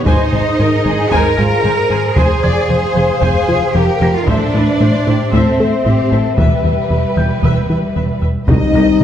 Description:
cinematic, hybrid orchestral and electronic film score; 114 BPM; 4/4; straight; A4 = 440 Hz
rich symphonic violin section; melody; 0.0-9.0 s; G4 to Bb5; -26 LUFS; equal
warm symphonic violin section; second line; 0.0-9.0 s; Eb4 to Eb5; -22 LUFS; left 1 dB
mellow French horn section; sustained chords; 0.0-9.0 s; Eb4 to F5; -20 LUFS; left 4 dB
rich symphonic cello section; bass; 0.0-9.0 s; C2 to Bb4; -19 LUFS; right 2 dB
dark baby grand piano; texture; 0.0-9.0 s; Bb5 to Bb6; -32 LUFS; left 2 dB
rich symphonic viola section; accompaniment; 0.1-9.0 s; Eb4 to Ab5; -24 LUFS; right 1 dB
plucky analog bass; riff; 0.1-9.0 s; C2 to A3; -17 LUFS; left 1 dB
warm symphonic double bass section; bass; 0.1-9.0 s; E1 to C2; -20 LUFS; right 3 dB
taiko ensemble; drums; 0.1-9.0 s; -19 LUFS; equal
dark trombone section; sustained chords; 8.5-9.0 s; G3 to C4; -20 LUFS; right 1 dB
warm tuba; bass; 8.5-9.0 s; C2; -20 LUFS; right 3 dB
impact; sound effects; 8.5-9.0 s; -20 LUFS; equal
wet recital hall reverb, RT60 1.6 s; dark, warm production; -11 LUFS; side -10 dB against mid
0.0-8.5 A section
impact 8.5-9.0
0.1 Ab; 2.2 Fm; 4.3 Am; 6.4 Em; 8.5 Cm

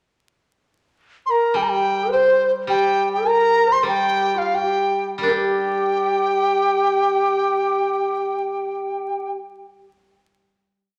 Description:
chinese traditional, Chinese chamber ensemble; 73-107 BPM; 2/4; straight; G yu mode; A4 = 440 Hz
reedy large dizi; melody; 1.3-9.3 s; C5 to C6; -22 LUFS; equal
mellow xiao; second line; 1.3-9.4 s; F4 to C5; -24 LUFS; equal
steel-string zither; accompaniment; 1.5-11.0 s; G3 to G4; -29 LUFS; equal
moderate recital hall reverb, RT60 1.5 s; vinyl crackle; -20 LUFS; mono
0.4-5.3 A section; 5.3-8.6 final chord
slowing down 2.7-5.3

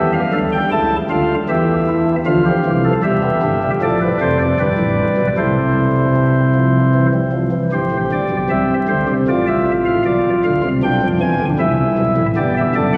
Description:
classical, baroque-style 4-part fugue for pipe organ; 78 BPM; 3/4; straight; C major; A4 = 440 Hz
pipe organ, flutes; solo; 0.0-13.0 s; E1 to A5; -16 LUFS; equal
wet cathedral reverb, RT60 5.1 s; vinyl crackle; -16 LUFS; mono
0.0-7.7 A section; 7.7-13.0 B section
0.0 Em; 0.7 A7/C#; 2.3 Dm; 3.0 Emadd11; 3.8 Dm7/A; 4.6 G; 5.4 C; 7.7 C/G; 9.3 Dm/A; 10.1 Bdim7; 11.6 C; 12.4 G

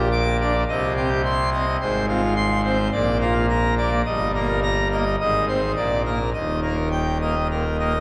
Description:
classical, organ toccata; 106 BPM; 4/4; straight; Eb major; A4 = 440 Hz
pipe organ, full organ; solo; 0.0-8.0 s; Eb1 to D6; -22 LUFS; equal
wet cathedral reverb, RT60 4.5 s; -22 LUFS; mono
0.0-8.0 A section
0.0 Gm/Bb; 0.7 Cm; 1.8 Fm/Ab; 2.9 Bb; 4.1 Eb/G; 5.2 Ab; 5.8 Bb; 6.3 Eb

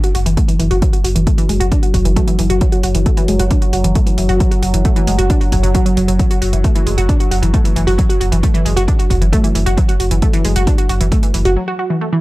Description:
driving peak-time techno; 134 BPM; 4/4; straight; F# minor; A4 = 440 Hz
wide unison pluck; riff; 0.0-12.2 s; E3 to F#4; -18 LUFS; equal; vintage 12-bit sampler grit, sidechain pumping, analog delay
analog drone; drone; 0.2-11.6 s; F#3; -23 LUFS; equal; chorus, sidechain pumping
electronic hi-hat; drums; 0.0-11.5 s; -26 LUFS; right 2 dB; sidechain pumping on hats, sidechain pumping on cymbals
saturated sub bass; bass; 0.1-11.6 s; F#1; -16 LUFS; equal; tube saturation, sidechain pumping, low-pass filter
electronic kick drum; drums; 0.4-11.2 s; -15 LUFS; equal
little or no reverb; dry, gritty hardware recording; -12 LUFS; side -19 dB against mid
0.0-12.2 A section
break 11.6-12.2

